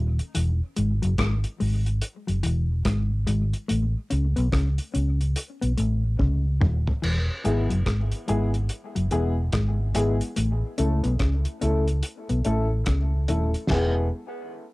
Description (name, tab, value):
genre	dub reggae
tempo	72 BPM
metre	4/4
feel	swing 62% on 16ths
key	E major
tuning	A4 = 440 Hz
part	mellow electric guitar	riff	0.0-13.4 s	D#3 to C#4	-30 LUFS	left 3 dB	dub echo
part	vintage muted fingered electric bass	bass	0.0-14.1 s	D#1 to C#2	-23 LUFS	equal	transformer saturation
part	cloth-damped thuddy drum kit	drums	0.2-13.9 s	crash cymbal, hi-hat, kick drum, rim click, snare drum, toms	-28 LUFS	equal	none
part	dark upright piano	stabs	7.4-14.0 s	G#3 to A4	-29 LUFS	left 2 dB	dub echo
part	breathy tenor saxophone	melody	13.7-14.1 s	B3	-33 LUFS	equal	dub echo
room	light reverb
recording	home recording on cassette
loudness	-22 LUFS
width	side -21 dB against mid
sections	0.0-7.0 A section; 7.0-13.7 B section; 13.7-14.7 C section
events	break 0.0-7.0; drum fill 6.2-7.0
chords	0.4 E; 3.7 A; 7.0 E; 10.4 A; 13.7 E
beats	| 0.35 1.19 2.02 2.85 | 3.69 4.52 5.36 6.19 | 7.03 7.86 8.70 9.53 | 10.37 11.20 12.04 12.87 | 13.70